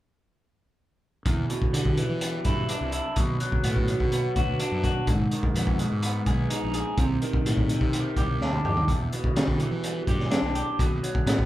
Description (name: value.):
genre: psychedelic rock.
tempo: 126 BPM.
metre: 4/4.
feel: straight.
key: E minor.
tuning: A4 = 442 Hz.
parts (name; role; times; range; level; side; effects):
electric guitar through a small old amp; riff; 1.3-11.5 s; E2 to G#4; -28 LUFS; equal; phaser.
fuzz fingered electric bass; bass; 1.3-11.5 s; G#1 to E3; -30 LUFS; equal; overdrive.
crunchy breakbeat drum kit; drums; 1.3-11.5 s; hi-hat, kick drum, snare drum, toms; -25 LUFS; equal; none.
room: light reverb.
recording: band playing live in one room.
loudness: -23 LUFS.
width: side -14 dB against mid.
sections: 1.3-11.5 A section.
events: drum fill 8.4-8.9.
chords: 1.3 Em7; 3.2 Bm; 5.1 G#m; 7.0 Cmadd9; 8.9 Em7; 10.8 B5.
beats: | 1.26 1.74 2.21 2.69 | 3.17 3.64 4.12 4.60 | 5.07 5.55 6.03 6.50 | 6.98 7.46 7.93 8.41 | 8.88 9.36 9.84 10.32 | 10.79 11.27.